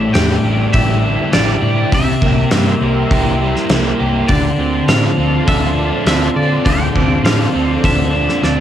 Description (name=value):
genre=rock, shoegaze and dream pop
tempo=101 BPM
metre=4/4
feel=straight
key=D minor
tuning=A4 = 437 Hz
part: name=twangy electric guitar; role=melody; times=0.0-8.6 s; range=D5 to G5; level=-22 LUFS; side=equal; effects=cassette tape, analog delay
part: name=analog string pad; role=sustained chords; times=0.0-8.6 s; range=F4 to D6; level=-25 LUFS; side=equal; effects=ensemble chorus
part: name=overdriven semi-hollow guitar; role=riff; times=0.0-8.6 s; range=A2 to A4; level=-19 LUFS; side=right 7 dB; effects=reverse reverb
part: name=thick fuzz guitar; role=riff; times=0.0-8.6 s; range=A2 to A4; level=-18 LUFS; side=left 6 dB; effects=distortion, ensemble chorus
part: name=hollow-body short-scale picked electric bass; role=bass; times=0.0-8.6 s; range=A1 to D3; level=-19 LUFS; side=equal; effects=none
part: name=gated 80s drum kit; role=drums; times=0.1-8.6 s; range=hi-hat, kick drum, snare drum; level=-16 LUFS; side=equal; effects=cassette tape
room=light reverb, small room ambience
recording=home recording on cassette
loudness=-12 LUFS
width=side -10 dB against mid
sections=0.0-8.6 A section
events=drum fill 8.4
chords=0.0 A7sus4; 1.9 C7; 4.3 Dm7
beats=0.14 0.73 1.33 | 1.92 2.51 3.10 3.70 | 4.29 4.88 5.47 6.07 | 6.66 7.25 7.84 8.44